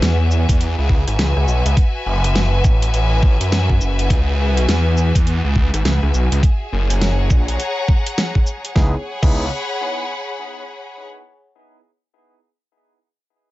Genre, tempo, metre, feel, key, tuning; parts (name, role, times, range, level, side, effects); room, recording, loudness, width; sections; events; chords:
glitch hop; 103 BPM; 4/4; swing 61% on 16ths; C# minor; A4 = 440 Hz
phased detuned saw bass; bass; 0.0-9.5 s; F#1 to F#2; -16 LUFS; equal; phaser, tube saturation
dubstep drum kit; drums; 0.0-9.3 s; crash cymbal, hi-hat, rim click, shaker, snare drum; -23 LUFS; equal
clear studio string section; texture; 0.0-11.1 s; F#4 to B5; -24 LUFS; left 2 dB; sidechain pumping
electronic kick drum; drums; 0.5-9.3 s; -15 LUFS; equal
barky tine electric piano; stabs; 8.8-9.4 s; B3 to G#4; -29 LUFS; equal; sidechain pumping, tape echo
little or no reverb; nothing above 7.7 kHz; -15 LUFS; side -17 dB against mid
0.0-8.8 A section; 8.8-11.1 B section
0.0 C#m7; 1.8 F#m7; 4.1 C#m7; 6.4 F#7; 8.8 C#m7